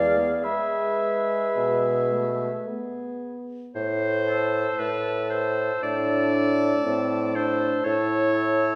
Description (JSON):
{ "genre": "classical, slow romantic movement for wind quintet", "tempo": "53-60 BPM", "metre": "4/4", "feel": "rubato", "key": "A minor", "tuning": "A4 = 437 Hz", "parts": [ { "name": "mellow concert flute", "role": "melody", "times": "0.0-8.8 s", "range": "B4 to E6", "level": "-32 LUFS", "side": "equal", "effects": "none" }, { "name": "warm oboe", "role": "second line", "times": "0.0-8.8 s", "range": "E5 to A5", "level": "-33 LUFS", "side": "equal", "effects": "none" }, { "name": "bright clarinet", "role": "accompaniment", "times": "0.0-8.8 s", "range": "G#4 to D5", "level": "-30 LUFS", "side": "equal", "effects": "none" }, { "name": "warm French horn", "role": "accompaniment", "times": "0.0-8.8 s", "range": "G#3 to E4", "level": "-32 LUFS", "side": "equal", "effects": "none" }, { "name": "clear bassoon", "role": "bass", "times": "0.0-8.7 s", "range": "E2 to B2", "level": "-28 LUFS", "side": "equal", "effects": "none" } ], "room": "wet recital hall reverb, RT60 1.3 s", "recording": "heard from further back in the room", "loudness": "-24 LUFS", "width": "mono", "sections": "0.0-3.8 A section; 3.8-8.8 B section", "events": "none", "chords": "0.0 E; 3.8 Am", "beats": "0.45 1.57 2.68 | 3.76 4.80 5.84 6.86 | 7.86" }